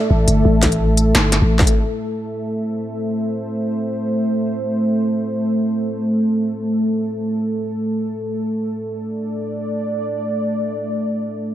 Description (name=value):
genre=half-time drum and bass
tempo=free time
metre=none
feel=none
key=A minor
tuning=A4 = 440 Hz
part: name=dark analog pad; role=sustained chords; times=0.0-11.5 s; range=A3 to E5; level=-19 LUFS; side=equal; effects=chorus, sidechain pumping
part: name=growling 808-style bass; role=bass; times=0.1-1.7 s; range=G1 to A1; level=-15 LUFS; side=equal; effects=tube saturation
part: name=industrial drum kit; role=drums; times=0.3-1.7 s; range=hi-hat, snare drum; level=-19 LUFS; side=left 1 dB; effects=none
part: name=electronic kick drum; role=drums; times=0.6-1.7 s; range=none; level=-17 LUFS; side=equal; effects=distortion
room=light reverb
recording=none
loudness=-17 LUFS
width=side -12 dB against mid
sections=0.0-1.8 A section; 1.8-11.5 B section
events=none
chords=0.0 A5; 1.8 Am